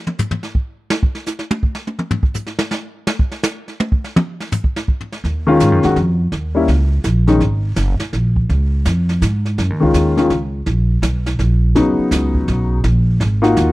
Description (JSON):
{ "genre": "jazz, small-group swing and bop", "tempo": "166 BPM", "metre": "3/4", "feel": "swing 64% on 8ths", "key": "Eb minor", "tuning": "A4 = 440 Hz", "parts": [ { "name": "jazz brush drum kit", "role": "drums", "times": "0.1-13.7 s", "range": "brushed snare drum, hi-hat, kick drum, snare drum, toms", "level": "-19 LUFS", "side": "equal", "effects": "none" }, { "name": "upright bass", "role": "bass", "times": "5.2-13.7 s", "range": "Gb1 to Ab2", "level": "-15 LUFS", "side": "equal", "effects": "none" }, { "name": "warm grand piano", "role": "accompaniment", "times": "5.5-7.4, 9.8-13.7 s", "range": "Db3 to Gb4", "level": "-14 LUFS", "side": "left 2 dB", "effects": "none" } ], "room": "studio reverb", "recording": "dry, close 1970s-style studio recording", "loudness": "-15 LUFS", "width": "side -18 dB against mid", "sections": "0.0-5.2 A section; 5.2-13.7 B section", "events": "drum solo 0.0-5.2", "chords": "0.0 N.C.; 5.2 Ebm11; 6.3 Eb7(no3); 7.4 Absus2; 8.5 Db; 9.6 Gbsus2 (rootless); 10.7 N.C.; 11.8 Ebm11" }